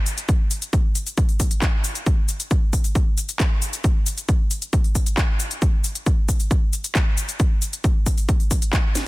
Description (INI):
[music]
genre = techno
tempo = 135 BPM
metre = 4/4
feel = straight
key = none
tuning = none
[part]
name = techno drum kit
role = drums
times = 0.1-9.0 s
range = handclaps, hi-hat, shaker, snare drum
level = -26 LUFS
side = left 1 dB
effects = overdrive, small room ambience
[part]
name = electronic kick drum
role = drums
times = 0.3-8.8 s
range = none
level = -19 LUFS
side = equal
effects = overdrive, small room ambience
[sound]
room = little or no reverb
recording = dense, heavily limited modern master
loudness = -18 LUFS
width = side -20 dB against mid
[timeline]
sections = 0.0-9.1 A section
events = none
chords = none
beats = | 0.29 0.73 1.18 1.62 | 2.06 2.51 2.95 3.40 | 3.84 4.29 4.73 5.18 | 5.62 6.07 6.51 6.95 | 7.40 7.84 8.29 8.73